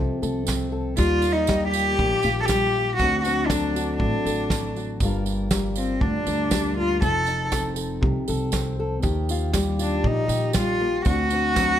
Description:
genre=acoustic folk duo or small band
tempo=119 BPM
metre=4/4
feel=straight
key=unclear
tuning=A4 = 440 Hz
part: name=fingerpicked steel-string acoustic guitar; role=accompaniment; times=0.0-11.8 s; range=G2 to Bb4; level=-26 LUFS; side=left 2 dB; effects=none
part: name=upright bass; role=bass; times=0.0-11.8 s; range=F1 to Eb2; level=-27 LUFS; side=equal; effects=none
part: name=tambourine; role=percussion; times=0.2-11.7 s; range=none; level=-35 LUFS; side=right 10 dB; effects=none
part: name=soft brush drum kit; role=drums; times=0.5-11.7 s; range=kick drum, snare drum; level=-26 LUFS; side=right 1 dB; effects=none
part: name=warm cello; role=melody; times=1.0-11.8 s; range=C4 to A4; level=-23 LUFS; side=equal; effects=plate reverb
room=light reverb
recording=none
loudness=-20 LUFS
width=side -10 dB against mid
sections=0.0-11.8 A section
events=none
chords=0.0 F; 1.0 Ebadd9; 3.0 D7; 5.0 Gm7; 7.0 F7; 9.0 Ebadd9; 11.1 D7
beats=0.48 | 0.98 1.48 1.99 2.49 | 2.99 3.50 4.00 4.50 | 5.01 5.51 6.01 6.52 | 7.02 7.53 8.03 8.53 | 9.04 9.54 10.05 10.55 | 11.06 11.56

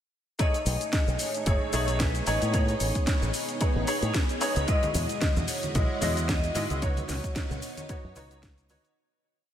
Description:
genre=nu-disco, nu disco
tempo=112 BPM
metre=4/4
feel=swing 56% on 16ths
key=B mixolydian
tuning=A4 = 438 Hz
part: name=vibraphone with medium hard mallets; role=melody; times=0.4-7.9 s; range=B4 to D#5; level=-35 LUFS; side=left 1 dB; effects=diffuse ambient delay
part: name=clear grand piano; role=accompaniment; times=0.4-8.9 s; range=G#3 to D#5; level=-32 LUFS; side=left 1 dB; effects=ensemble chorus, tape echo
part: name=string machine, full ensemble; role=sustained chords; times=0.4-8.9 s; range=G#3 to D#5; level=-36 LUFS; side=equal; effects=ensemble chorus, sidechain pumping
part: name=electronic kick drum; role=drums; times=0.4-8.6 s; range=none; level=-27 LUFS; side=equal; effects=overdrive, studio reverb
part: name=house drum kit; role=drums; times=0.4-8.9 s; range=hi-hat, shaker, snare drum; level=-33 LUFS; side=equal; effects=overdrive, studio reverb
part: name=fingered electric bass with an envelope filter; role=bass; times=0.7-8.8 s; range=F#1 to A2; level=-29 LUFS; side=equal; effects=none
part: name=cabasa and congas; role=percussion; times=4.7-8.9 s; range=none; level=-39 LUFS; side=right 2 dB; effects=none
room=moderate lush hall reverb, RT60 2.5 s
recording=dreamy mix soaked in reverb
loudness=-24 LUFS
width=side -10 dB against mid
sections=0.4-9.0 drop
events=drop 0.4-9.0; fade-out 6.1-9.0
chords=0.4 B13; 2.3 Amaj9#11; 4.7 Emaj9; 6.8 C#9sus4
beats=| 0.39 0.93 1.47 2.00 | 2.54 3.07 3.61 4.14 | 4.68 5.22 5.75 6.29 | 6.82 7.36 7.89 8.43

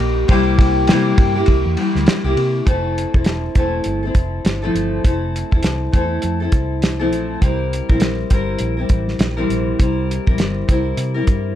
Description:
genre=indie pop, bedroom pop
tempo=101 BPM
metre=4/4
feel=swing 60% on 16ths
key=F major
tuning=A4 = 438 Hz
part: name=fingerpicked steel-string acoustic guitar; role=accompaniment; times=0.0-11.6 s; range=C3 to Bb4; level=-19 LUFS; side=left 2 dB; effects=wide subtle chorus, warbly pitch drift
part: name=vintage muted fingered electric bass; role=bass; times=0.0-11.6 s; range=E1 to C3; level=-22 LUFS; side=equal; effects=none
part: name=cloth-damped thuddy drum kit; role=drums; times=0.0-11.4 s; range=hi-hat, kick drum, ride cymbal, snare drum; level=-16 LUFS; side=equal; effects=none
room=light reverb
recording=dark, warm production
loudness=-15 LUFS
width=side -11 dB against mid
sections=0.0-2.7 A section; 2.7-11.6 B section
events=none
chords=0.3 C7; 2.7 Fmaj7; 7.4 C7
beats=| 0.29 0.88 1.48 2.07 | 2.67 3.26 3.85 4.45 | 5.04 5.64 6.23 6.82 | 7.42 8.01 8.61 9.20 | 9.79 10.39 10.98

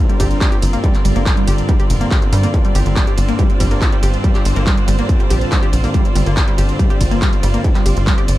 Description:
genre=driving peak-time techno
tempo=141 BPM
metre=4/4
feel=straight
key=G minor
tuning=A4 = 438 Hz
part: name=analog drone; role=drone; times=0.0-8.4 s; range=G2 to D3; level=-24 LUFS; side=left 1 dB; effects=chorus, sidechain pumping
part: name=warm chamber string section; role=texture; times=0.0-8.4 s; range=C4 to D5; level=-24 LUFS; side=right 1 dB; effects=sidechain pumping
part: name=analog pluck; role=riff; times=0.1-8.2 s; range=G3 to G4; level=-23 LUFS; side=right 1 dB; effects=chorus, overdrive, sidechain pumping, digital delay
part: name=techno drum kit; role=drums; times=0.1-8.4 s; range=handclaps, hi-hat, ride cymbal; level=-25 LUFS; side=right 1 dB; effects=overdrive, sidechain pumping on hats, small room reverb, sidechain pumping on cymbals
part: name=tight sequencer bass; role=bass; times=0.2-8.4 s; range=F1 to G2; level=-16 LUFS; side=equal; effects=tube saturation, sidechain pumping
part: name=electronic kick drum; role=drums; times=0.2-8.2 s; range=none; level=-15 LUFS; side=equal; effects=distortion, overdrive, small room reverb
room=little or no reverb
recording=dark, warm production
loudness=-12 LUFS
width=side -16 dB against mid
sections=0.0-8.4 A section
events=none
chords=0.0 Gm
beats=0.41 | 0.84 1.26 1.69 2.11 | 2.54 2.96 3.39 3.82 | 4.24 4.67 5.09 5.52 | 5.94 6.37 6.79 7.22 | 7.65 8.07

